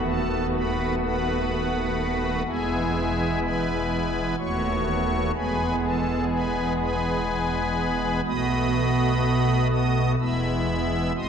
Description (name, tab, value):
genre	classical, chorale-style piece for pipe organ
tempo	62 BPM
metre	3/4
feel	rubato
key	E major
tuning	A4 = 440 Hz
part	pipe organ, strings celeste	solo	0.0-11.3 s	D#1 to E6	-22 LUFS	equal	none
room	wet church reverb, RT60 2.7 s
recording	dark, warm production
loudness	-22 LUFS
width	side -7 dB against mid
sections	0.0-11.3 A section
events	none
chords	0.0 B7/D#; 2.5 E; 4.4 B7/D#; 5.3 E; 8.2 B7; 10.2 E